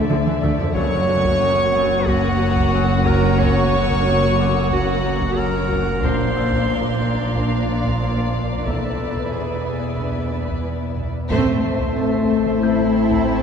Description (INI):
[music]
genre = cinematic, suspense film score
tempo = 91 BPM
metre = 4/4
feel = straight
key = unclear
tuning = A4 = 440 Hz
[part]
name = warm studio violin section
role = second line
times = 0.0-13.4 s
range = C5 to F#5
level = -29 LUFS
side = left 2 dB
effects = none
[part]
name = warm studio viola section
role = accompaniment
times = 0.0-13.4 s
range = E3 to F#4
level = -26 LUFS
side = equal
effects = none
[part]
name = flickering grainy texture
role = sustained chords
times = 0.0-13.4 s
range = C#4 to B5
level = -30 LUFS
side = left 1 dB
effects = built-in reverb
[part]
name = warm French horn section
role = sustained chords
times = 0.0-13.4 s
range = F3 to D4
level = -29 LUFS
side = left 3 dB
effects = none
[part]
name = Celtic harp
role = riff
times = 0.0-13.4 s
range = E2 to A3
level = -26 LUFS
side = left 7 dB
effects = none
[part]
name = deep rumbling drone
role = drone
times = 0.0-13.4 s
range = F#1 to E2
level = -29 LUFS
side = equal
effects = built-in reverb
[part]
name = dark baby grand piano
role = texture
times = 0.0-13.4 s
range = A4 to G6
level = -38 LUFS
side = left 3 dB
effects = none
[part]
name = dark studio cello section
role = bass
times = 0.1-13.4 s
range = E2 to E4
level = -26 LUFS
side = right 2 dB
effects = none
[part]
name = warm studio double bass section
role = bass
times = 0.1-13.4 s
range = E1 to D2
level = -25 LUFS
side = right 3 dB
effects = none
[part]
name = taiko ensemble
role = drums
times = 0.1-13.4 s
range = none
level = -28 LUFS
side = equal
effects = none
[part]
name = clear clarinet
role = second line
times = 0.7-10.6 s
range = E#4 to C#5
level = -23 LUFS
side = right 1 dB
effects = none
[part]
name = rich studio violin section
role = melody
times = 0.8-13.4 s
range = E5 to C#6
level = -31 LUFS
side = left 1 dB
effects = none
[part]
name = warm chamber violin section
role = texture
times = 0.8-5.7 s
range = C#6 to E6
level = -38 LUFS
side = left 2 dB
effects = none
[sound]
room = wet church reverb, RT60 3.6 s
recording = dark, warm production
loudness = -17 LUFS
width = side -7 dB against mid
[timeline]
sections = 0.0-11.3 A section; 11.3-13.4 B section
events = drum fill 0.1-0.8; band accent 11.3-12.0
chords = 0.0 Dmadd9; 0.8 F#; 6.0 A#add9; 8.7 E7; 11.3 Am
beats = 0.10 | 0.76 1.42 2.08 2.74 | 3.40 4.05 4.71 5.37 | 6.03 6.69 7.35 8.01 | 8.67 9.33 9.99 10.65 | 11.31 11.97 12.63 13.29